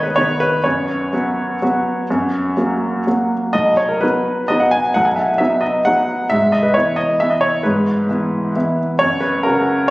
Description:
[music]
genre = classical, piano waltz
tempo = 119-140 BPM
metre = 3/4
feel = rubato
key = B major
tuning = A4 = 439 Hz
[part]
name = clear upright piano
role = solo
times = 0.0-9.9 s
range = B1 to G#5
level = -14 LUFS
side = equal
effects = none
[sound]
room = wet scoring stage reverb, RT60 2.1 s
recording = recorded on a phone in the room, club reverb, compression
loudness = -15 LUFS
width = side -20 dB against mid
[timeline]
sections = 0.0-9.9 A section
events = none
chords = 0.0 G#m (rootless); 0.6 F#sus4; 2.1 F#; 3.6 B; 6.3 E/G#; 9.0 F#

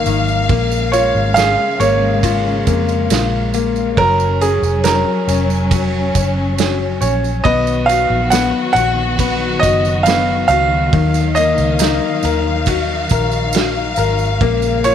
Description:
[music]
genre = pop ballad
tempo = 69 BPM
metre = 4/4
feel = straight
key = Eb minor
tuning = A4 = 439 Hz
[part]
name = warm upright piano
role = accompaniment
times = 0.0-14.9 s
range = Eb3 to Bb4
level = -20 LUFS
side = left 11 dB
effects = none
[part]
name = warm studio string section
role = sustained chords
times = 0.0-14.9 s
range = Db3 to F5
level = -21 LUFS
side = equal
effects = none
[part]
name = vintage muted fingered electric bass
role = bass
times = 0.1-14.9 s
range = F1 to F2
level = -19 LUFS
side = right 1 dB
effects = none
[part]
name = loose indie drum kit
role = drums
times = 0.1-14.9 s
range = kick drum, ride cymbal, snare drum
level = -22 LUFS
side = right 5 dB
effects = none
[part]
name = tambourine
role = percussion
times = 0.1-14.9 s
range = none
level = -28 LUFS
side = right 18 dB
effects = none
[part]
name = bright concert grand piano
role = melody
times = 0.9-14.9 s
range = Ab4 to F#5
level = -16 LUFS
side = right 2 dB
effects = tape echo
[sound]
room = light reverb, small room reverb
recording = 1960s-style stereo with parts hard left and right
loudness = -13 LUFS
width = side -9 dB against mid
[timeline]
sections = 0.0-14.9 A section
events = none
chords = 0.5 Bbm7; 4.0 Gb; 7.5 Bmaj7; 10.9 Ebmadd9; 14.4 Bbm7

